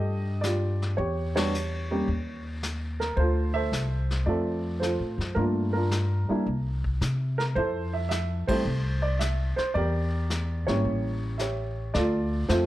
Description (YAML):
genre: jazz piano trio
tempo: 109 BPM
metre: 4/4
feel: swing 69% on 8ths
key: F major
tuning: A4 = 441 Hz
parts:
  - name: dark baby grand piano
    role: melody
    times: 0.0-12.7 s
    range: F3 to E5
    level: -28 LUFS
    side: right 1 dB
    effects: none
  - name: upright bass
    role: bass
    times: 0.0-12.7 s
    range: Ab1 to C3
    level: -28 LUFS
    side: equal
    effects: none
  - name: vintage brush drum kit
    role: drums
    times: 0.4-12.7 s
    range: brushed snare drum, hi-hat, kick drum, ride cymbal, snare drum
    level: -36 LUFS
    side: left 2 dB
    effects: none
room: light reverb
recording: none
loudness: -25 LUFS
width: side -15 dB against mid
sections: 0.0-11.9 A section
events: band accent 1.3, 8.4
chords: 0.0 Ebmaj9#11; 1.0 Em; 2.1 N.C.; 3.2 Dm7; 5.4 Gm7; 6.5 Bbsus2/C; 7.6 Fmaj7; 9.8 Em7b5; 10.8 A7b9; 11.9 Dm7